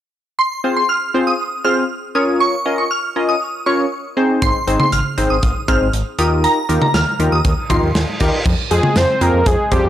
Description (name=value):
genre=synth-pop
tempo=119 BPM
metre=4/4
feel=straight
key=F minor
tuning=A4 = 442 Hz
part: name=shimmering bell with halo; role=second line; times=0.4-7.8 s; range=Bb5 to F6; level=-19 LUFS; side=right 1 dB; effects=ensemble chorus, tremolo, analog delay
part: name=funky polysynth comp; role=accompaniment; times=0.6-9.9 s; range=C4 to Eb5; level=-18 LUFS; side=left 1 dB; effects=chorus
part: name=fat analog bass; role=bass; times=4.4-9.9 s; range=Ab1 to F2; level=-19 LUFS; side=equal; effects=transformer saturation
part: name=modern studio drum kit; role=drums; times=4.4-9.8 s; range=crash cymbal, hi-hat, kick drum, snare drum, toms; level=-19 LUFS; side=equal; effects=none
part: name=reverse cymbal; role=sound effects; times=7.7-8.5 s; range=none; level=-26 LUFS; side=right 1 dB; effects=none
part: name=fat analog lead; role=melody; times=8.7-9.9 s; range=G4 to C5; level=-16 LUFS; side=equal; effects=chorus
room=light reverb, small room ambience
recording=dry, gritty hardware recording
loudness=-14 LUFS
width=side -11 dB against mid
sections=0.4-8.5 A section; 8.5-9.9 B section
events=reverse cymbal 7.7-8.5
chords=0.4 Fm; 2.2 Bbm; 4.2 Ab; 6.2 Ebadd9; 8.5 Fm